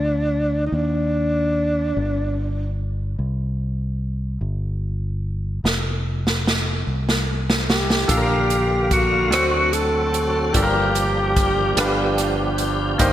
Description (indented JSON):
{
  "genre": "slow gospel",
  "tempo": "49 BPM (dotted quarters)",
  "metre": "6/8",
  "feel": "straight",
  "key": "unclear",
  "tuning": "A4 = 442 Hz",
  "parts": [
    { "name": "breathy tenor saxophone", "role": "melody", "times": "0.0-2.8, 7.7-12.6 s", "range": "D4 to A4", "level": "-22 LUFS", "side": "equal", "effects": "none" },
    { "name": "fingered electric bass", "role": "bass", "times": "0.0-13.1 s", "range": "F1 to Eb2", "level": "-24 LUFS", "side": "equal", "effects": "none" },
    { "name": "swinging big-band drum kit", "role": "drums", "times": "5.7-13.1 s", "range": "hi-hat, kick drum, rim click, snare drum", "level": "-22 LUFS", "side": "right 1 dB", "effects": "none" },
    { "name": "clear baby grand piano", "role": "accompaniment", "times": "8.1-13.1 s", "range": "G2 to C5", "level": "-23 LUFS", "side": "equal", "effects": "none" },
    { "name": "tonewheel organ", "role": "sustained chords", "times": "8.1-13.1 s", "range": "D3 to F5", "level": "-24 LUFS", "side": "right 2 dB", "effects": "slow rotary speaker, overdrive, chorus vibrato" }
  ],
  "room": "moderate plate reverb, RT60 2.6 s",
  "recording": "bright 1980s-style digital production",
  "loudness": "-18 LUFS",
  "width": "side -12 dB against mid",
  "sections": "0.0-13.1 A section",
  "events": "drum fill 5.6-8.1",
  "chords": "0.0 N.C.; 2.0 G5; 3.2 C5; 5.6 F5; 8.1 Bb; 9.3 D7; 10.5 Gm7; 11.8 G7",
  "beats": "| 0.73 1.95 | 3.18 4.41 | 5.63 6.86 | 8.09 9.32 | 10.54 11.77 | 13.00"
}